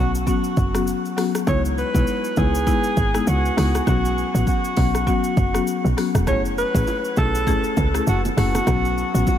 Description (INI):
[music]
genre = afrobeats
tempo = 100 BPM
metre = 4/4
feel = swing 58% on 16ths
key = unclear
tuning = A4 = 438 Hz
[part]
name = warm alto saxophone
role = melody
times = 0.0-9.4 s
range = F#4 to C#5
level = -24 LUFS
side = right 1 dB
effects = ping-pong delay
[part]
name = buzzing marimba with medium mallets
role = accompaniment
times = 0.0-9.3 s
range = F#3 to G#4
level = -24 LUFS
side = left 6 dB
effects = none
[part]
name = woody log drum bass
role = bass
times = 0.0-9.2 s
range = E1 to C#2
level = -22 LUFS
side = right 1 dB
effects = none
[part]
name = afro-pop drum kit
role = drums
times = 0.1-9.4 s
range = hi-hat, kick drum, rim click, shaker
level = -25 LUFS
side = right 1 dB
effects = none
[part]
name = congas and bongos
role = percussion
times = 6.3-9.4 s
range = none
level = -31 LUFS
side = right 5 dB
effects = none
[sound]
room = moderate huge ambient reverb, RT60 8.8 s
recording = dreamy mix soaked in reverb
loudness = -18 LUFS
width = side -10 dB against mid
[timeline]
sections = 0.0-9.4 A section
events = none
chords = 0.0 Bsus2; 1.5 C#m7; 3.9 Bsus2; 6.3 F#m7; 8.7 Bsus2